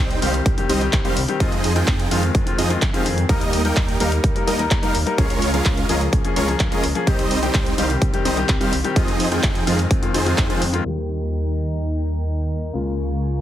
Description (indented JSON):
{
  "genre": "EDM, festival progressive house",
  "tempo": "127 BPM",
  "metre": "4/4",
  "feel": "straight",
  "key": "F minor",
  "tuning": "A4 = 441 Hz",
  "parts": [
    { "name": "supersaw chords", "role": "riff", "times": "0.0-10.6 s", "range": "F3 to G5", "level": "-23 LUFS", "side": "right 2 dB", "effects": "sidechain pumping, tape echo" },
    { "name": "wide detuned saw bass", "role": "bass", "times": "0.0-13.4 s", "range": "C2 to F2", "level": "-24 LUFS", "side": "equal", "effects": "chorus, sidechain pumping" },
    { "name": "big-room dance drum kit", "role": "drums", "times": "0.1-10.9 s", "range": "crash cymbal, handclaps, hi-hat", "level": "-26 LUFS", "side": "equal", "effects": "low-pass filter on hats, low-pass filter on snare, low-pass filter on cymbals" },
    { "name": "clear concert grand piano", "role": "accompaniment", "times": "0.2-13.4 s", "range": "Db3 to Bb4", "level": "-25 LUFS", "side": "left 4 dB", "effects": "sidechain pumping, tape echo" },
    { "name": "electronic kick drum", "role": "drums", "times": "0.5-10.5 s", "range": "none", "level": "-20 LUFS", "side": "equal", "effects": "none" },
    { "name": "lush unison pad", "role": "sustained chords", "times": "10.9-13.4 s", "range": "Eb4 to Db6", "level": "-31 LUFS", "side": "left 1 dB", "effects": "chorus, sidechain pumping" }
  ],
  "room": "light reverb",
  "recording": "heavily compressed radio sound, multiband compression, low-pass filter",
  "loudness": "-17 LUFS",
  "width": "side -12 dB against mid",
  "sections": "0.0-10.9 A section; 10.9-13.4 B section",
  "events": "drop 0.0-10.9; filter sweep 10.9-13.4",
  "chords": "0.0 Cm; 1.4 Fm7; 3.3 Eb; 5.2 Bbm7/Db; 7.1 Cm; 9.0 Fm7; 10.9 Eb; 12.7 Bbm7/Db"
}